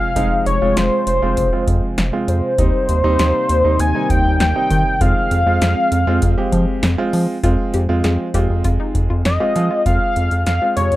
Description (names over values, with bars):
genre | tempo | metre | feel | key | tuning
synth-pop | 99 BPM | 4/4 | straight | F minor | A4 = 440 Hz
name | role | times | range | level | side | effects
octave-doubled lead | melody | 0.0-11.0 s | C5 to Ab5 | -18 LUFS | left 1 dB | chorus, tape echo
clear concert grand piano | accompaniment | 0.0-11.0 s | C3 to G4 | -22 LUFS | right 3 dB | none
phased analog pad | sustained chords | 0.0-9.8 s | C3 to Eb4 | -27 LUFS | left 1 dB | phaser, chorus
round analog bass | bass | 0.2-11.0 s | F1 to F3 | -18 LUFS | equal | none
electro analog drum machine | drums | 0.2-11.0 s | hi-hat, kick drum, snare drum | -21 LUFS | equal | none
analog pluck | arpeggios | 7.4-9.8 s | Eb4 to Ab4 | -27 LUFS | left 4 dB | chorus, tape echo
room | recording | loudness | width
little or no reverb | rough home demo mix | -14 LUFS | side -16 dB against mid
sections
0.0-7.4 A section; 7.4-9.9 B section; 9.9-11.0 C section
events
none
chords
0.0 Fm; 2.6 Eb6; 5.0 Fm